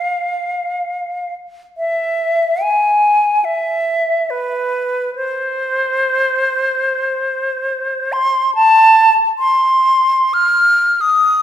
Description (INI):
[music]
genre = classical, free, expressive piece for unaccompanied flute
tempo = free time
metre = none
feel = none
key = unclear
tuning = A4 = 444 Hz
[part]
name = bright silver concert flute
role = solo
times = 0.0-11.4 s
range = B4 to F6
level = -13 LUFS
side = equal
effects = none
[sound]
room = wet recital hall reverb, RT60 1.5 s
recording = recorded in a church or concert hall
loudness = -13 LUFS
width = side -10 dB against mid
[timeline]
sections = 0.0-11.4 A section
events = none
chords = none